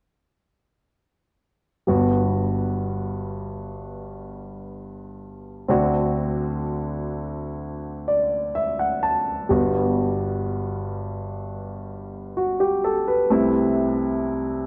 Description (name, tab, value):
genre	pop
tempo	63 BPM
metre	4/4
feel	straight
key	G major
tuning	A4 = 438 Hz
part	warm grand piano	accompaniment	1.9-14.7 s	G1 to A5	-24 LUFS	equal	none
room	moderate plate reverb, RT60 2.8 s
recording	dark, warm production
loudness	-24 LUFS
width	mono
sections	1.9-14.7 A section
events	grand piano fill 7.6-9.5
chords	1.9 Gmaj7; 5.7 D7; 9.5 Gmaj7; 13.3 C6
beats	| 1.89 2.84 3.79 4.74 | 5.69 6.65 7.60 8.55 | 9.50 10.46 11.41 12.36 | 13.31 14.27